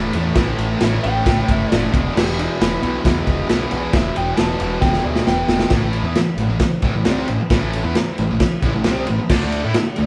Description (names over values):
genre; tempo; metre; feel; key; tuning
garage rock duo or trio; 134 BPM; 4/4; straight; A minor; A4 = 441 Hz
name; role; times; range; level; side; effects
electric slide guitar; melody; 0.0-5.7 s; E4 to A5; -27 LUFS; equal; none
thick fuzz guitar; riff; 0.0-10.1 s; E2 to E4; -24 LUFS; equal; distortion
growling picked electric bass; bass; 0.0-10.1 s; E1 to A2; -26 LUFS; equal; overdrive
crunchy breakbeat drum kit; drums; 0.1-10.1 s; crash cymbal, kick drum, ride cymbal, snare drum; -21 LUFS; equal; none
room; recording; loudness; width
moderate large studio reverb, RT60 1.0 s; band playing live in one room; -18 LUFS; mono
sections
0.0-5.7 A section; 5.7-10.1 B section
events
electric slide guitar solo 0.0-5.7; drum fill 4.8-5.7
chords
0.0 A5; 1.9 Em; 5.7 Am; 9.3 D5